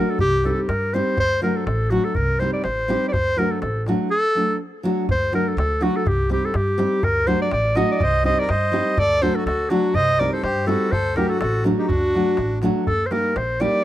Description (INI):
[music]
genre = balkan folk, Balkan wedding band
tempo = 123 BPM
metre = 2/4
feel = swing 56% on 16ths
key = D phrygian dominant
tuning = A4 = 440 Hz
[part]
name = bright clarinet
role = melody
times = 0.0-13.8 s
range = F#4 to Eb5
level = -21 LUFS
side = equal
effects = none
[part]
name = nylon-string guitar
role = accompaniment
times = 0.0-13.8 s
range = F#3 to G4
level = -23 LUFS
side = equal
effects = none
[part]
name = upright bass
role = bass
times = 0.2-13.7 s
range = A1 to G2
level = -25 LUFS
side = equal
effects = none
[part]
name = darbuka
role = percussion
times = 0.2-13.7 s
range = none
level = -27 LUFS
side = left 1 dB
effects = none
[part]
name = accordion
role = second line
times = 8.0-12.6 s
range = D4 to C5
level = -29 LUFS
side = left 2 dB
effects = none
[sound]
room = small room ambience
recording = dry, close 1970s-style studio recording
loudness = -18 LUFS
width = side -13 dB against mid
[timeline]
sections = 0.0-5.1 A section; 5.1-12.9 A section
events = none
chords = 0.2 Cm; 1.2 D; 2.2 Cm; 3.1 D; 6.1 Cm; 7.0 D; 8.0 Cm; 9.0 D; 10.0 Cm; 10.9 D; 12.9 Eb